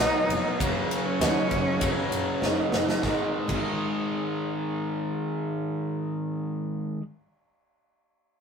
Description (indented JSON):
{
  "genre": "quiet-loud alternative rock",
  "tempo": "99 BPM",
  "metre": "4/4",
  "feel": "straight",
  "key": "G# minor",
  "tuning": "A4 = 438 Hz",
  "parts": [
    { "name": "clear cello", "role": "melody", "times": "0.0-2.4 s", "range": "A#3 to D#4", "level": "-29 LUFS", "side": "left 1 dB", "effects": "none" },
    { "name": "cranked stack guitar", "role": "riff", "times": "0.0-7.0 s", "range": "F#2 to B3", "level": "-28 LUFS", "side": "equal", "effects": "overdrive" },
    { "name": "dark double bass", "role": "bass", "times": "0.0-3.6 s", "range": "E#1 to F#2", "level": "-35 LUFS", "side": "equal", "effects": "none" },
    { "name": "big rock drum kit", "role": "drums", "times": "0.3-3.7 s", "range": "crash cymbal, kick drum, ride cymbal, snare drum", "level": "-27 LUFS", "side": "right 1 dB", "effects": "none" }
  ],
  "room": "light reverb",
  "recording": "rough rehearsal-room recording",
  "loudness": "-25 LUFS",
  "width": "side -6 dB against mid",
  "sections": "0.0-3.0 A section; 3.0-5.5 B section",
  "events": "cello solo 0.0-3.0; drum fill 2.4-3.0",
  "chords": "0.0 B; 0.6 F#5; 3.0 G#5"
}